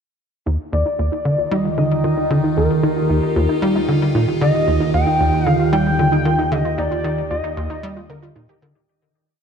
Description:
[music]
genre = ambient, sequencer-driven space music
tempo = 114 BPM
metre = 4/4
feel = straight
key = Eb major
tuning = A4 = 440 Hz
[part]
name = evolving wavetable pad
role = sustained chords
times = 1.3-8.9 s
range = Eb3 to G4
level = -21 LUFS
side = right 2 dB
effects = phaser, built-in reverb, shimmer reverb
[part]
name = wide unison pluck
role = arpeggios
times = 0.5-8.8 s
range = Eb4 to Bb4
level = -27 LUFS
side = right 2 dB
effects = auto-pan, shimmer reverb, ping-pong delay
[part]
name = tight sequencer bass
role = riff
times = 0.5-8.7 s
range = Eb2 to G3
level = -20 LUFS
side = equal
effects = wide subtle chorus, cassette tape, ping-pong delay
[part]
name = analog drone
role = bass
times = 0.5-8.9 s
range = Eb2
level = -28 LUFS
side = equal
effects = chorus
[part]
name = pulse-width lead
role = melody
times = 0.7-8.6 s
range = Bb4 to G5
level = -22 LUFS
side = left 1 dB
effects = chorus, shimmer reverb, ping-pong delay
[sound]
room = wet plate reverb, RT60 2.5 s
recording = none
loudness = -16 LUFS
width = side -7 dB against mid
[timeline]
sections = 0.5-8.9 A section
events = fade-in on synth drone 0.5-8.9; filter sweep on synth arpeggio sound 0.5-8.9; fade-out 6.1-8.9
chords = 0.5 Ebadd9

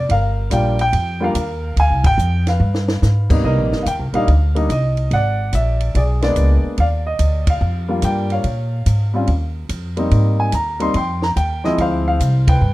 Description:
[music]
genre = jazz piano trio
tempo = 144 BPM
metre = 4/4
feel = swing 66% on 8ths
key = C minor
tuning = A4 = 440 Hz
[part]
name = warm grand piano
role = melody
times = 0.0-12.7 s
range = C3 to C6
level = -20 LUFS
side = equal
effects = none
[part]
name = upright bass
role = bass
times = 0.0-12.7 s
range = G1 to Bb2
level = -17 LUFS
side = equal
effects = none
[part]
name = compact cocktail drum kit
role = drums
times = 0.1-12.5 s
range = crash cymbal, hi-hat, kick drum, ride cymbal, snare drum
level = -22 LUFS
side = equal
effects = none
[sound]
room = light reverb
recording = rough home demo mix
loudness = -15 LUFS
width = side -17 dB against mid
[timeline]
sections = 0.0-3.4 A section; 3.4-12.7 B section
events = band accent 2.0, 7.4, 12.4; drum fill 2.6-3.0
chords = 0.1 Gm7; 1.8 Dm7b5; 2.6 G7b9; 3.4 Cm9; 5.1 E7#11; 6.8 Ebmaj9; 8.5 Bbm7; 9.3 Ebsus2; 10.1 Abmaj9; 11.8 Dm7b5

